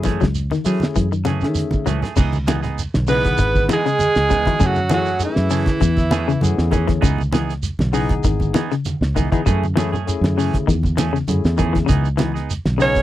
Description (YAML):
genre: afrobeat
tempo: 99 BPM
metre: 4/4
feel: swing 53% on 16ths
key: C# minor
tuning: A4 = 440 Hz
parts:
  - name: barky tine electric piano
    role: accompaniment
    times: 0.0-13.0 s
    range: E3 to F#5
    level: -26 LUFS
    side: left 8 dB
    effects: overdrive
  - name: fingered electric bass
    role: bass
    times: 0.0-13.0 s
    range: G#1 to F#3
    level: -21 LUFS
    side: equal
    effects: none
  - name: congas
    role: percussion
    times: 0.0-13.0 s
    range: none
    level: -26 LUFS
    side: right 2 dB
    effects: none
  - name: shekere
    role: percussion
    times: 0.0-13.0 s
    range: none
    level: -28 LUFS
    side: right 3 dB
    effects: none
  - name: clean electric guitar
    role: arpeggios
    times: 0.1-13.0 s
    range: C#3 to F#3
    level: -23 LUFS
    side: left 7 dB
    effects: none
  - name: clean electric guitar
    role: stabs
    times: 0.1-13.0 s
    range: E3 to G#4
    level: -26 LUFS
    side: right 8 dB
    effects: none
  - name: cloth-damped thuddy drum kit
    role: drums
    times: 0.1-13.0 s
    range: crash cymbal, hi-hat, kick drum, snare drum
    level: -21 LUFS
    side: equal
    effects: none
  - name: breathy alto saxophone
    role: melody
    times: 3.1-6.7, 12.8-13.0 s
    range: E4 to C#5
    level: -20 LUFS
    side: right 3 dB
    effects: none
  - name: growling tenor saxophone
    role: second line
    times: 3.1-6.7, 12.8-13.0 s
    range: E3 to C#4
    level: -26 LUFS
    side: right 3 dB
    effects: none
room: little or no reverb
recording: dry, close 1970s-style studio recording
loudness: -16 LUFS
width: side -14 dB against mid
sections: 0.0-2.2 A section; 2.2-13.0 B section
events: drum fill 1.6-2.2; tine electric piano fill 6.1-7.0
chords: 0.0 F#m9; 2.2 C#m9; 4.6 F#m9; 7.0 C#m9; 9.5 F#m9; 11.9 C#m9